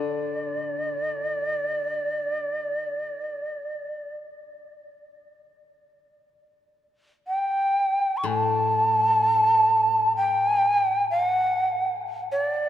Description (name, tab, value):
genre	japanese traditional, Japanese chamber music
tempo	free time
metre	none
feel	none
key	D ryukyu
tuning	A4 = 441 Hz
part	breathy shakuhachi	melody	0.0-12.7 s	D5 to C#6	-22 LUFS	equal	none
part	koto	accompaniment	0.0-11.6 s	A2 to D3	-33 LUFS	left 6 dB	none
room	wet cathedral reverb, RT60 6.3 s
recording	none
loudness	-22 LUFS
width	side -11 dB against mid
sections	0.0-12.7 A section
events	none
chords	none